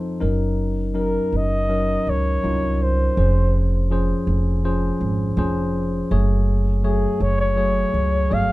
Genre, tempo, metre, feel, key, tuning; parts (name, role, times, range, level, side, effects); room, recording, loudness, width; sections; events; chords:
folk; 82 BPM; 4/4; straight; A4 = 440 Hz
bright tine electric piano; accompaniment; 0.0-8.5 s; F1 to Db5; -23 LUFS; left 2 dB
upright bass; bass; 0.2-8.5 s; F1 to Db2; -21 LUFS; right 1 dB
breathy flugelhorn; melody; 1.0-8.5 s; Ab4 to F5; -23 LUFS; equal
little or no reverb; minimal, uncompressed stereo recording; -18 LUFS; side -18 dB against mid
0.2-8.5 A section
0.2 Gb6; 3.2 Dbmaj7/F; 6.1 Gbmadd9